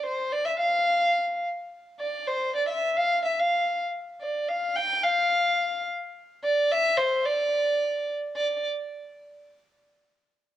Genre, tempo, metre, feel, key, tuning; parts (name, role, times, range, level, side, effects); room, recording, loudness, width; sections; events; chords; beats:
klezmer; 109 BPM; 2/4; straight; D minor; A4 = 440 Hz
warm violin; solo; 0.0-8.6 s; C5 to G5; -24 LUFS; equal
moderate spring reverb, RT60 2.1 s; home recording on cassette; -23 LUFS; side -12 dB against mid
0.0-8.3 A section; 8.3-9.5 B section
0.06 | 0.61 1.17 | 1.72 2.27 | 2.82 3.37 | 3.93 4.48 | 5.03 5.58 | 6.14 6.69 | 7.24 7.80 | 8.35